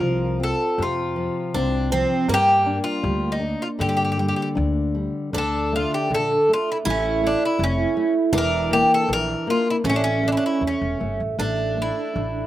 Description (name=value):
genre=fado-style ballad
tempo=79 BPM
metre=2/4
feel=rubato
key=G minor, D harmonic minor from 5.3 s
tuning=A4 = 440 Hz
part: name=Irish bouzouki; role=melody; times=0.0-12.5 s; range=C#4 to Bb4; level=-23 LUFS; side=equal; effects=none
part: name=picked twelve-string acoustic guitar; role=second line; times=0.0-12.5 s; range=Bb3 to F4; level=-26 LUFS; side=right 3 dB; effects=slapback echo
part: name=nylon-string guitar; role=accompaniment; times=0.0-12.5 s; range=C3 to D4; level=-25 LUFS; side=left 1 dB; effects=slapback echo
part: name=upright bass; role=bass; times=0.0-12.4 s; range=E1 to G2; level=-26 LUFS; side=left 1 dB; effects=none
room=light reverb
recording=recorded outdoors, with no room sound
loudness=-19 LUFS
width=side -13 dB against mid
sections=0.0-5.3 A section; 5.3-12.5 B section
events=none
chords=0.0 F5; 2.3 Gm; 5.3 D5; 6.9 A5; 8.3 E7(b5, no3); 9.8 A; 11.4 D5/A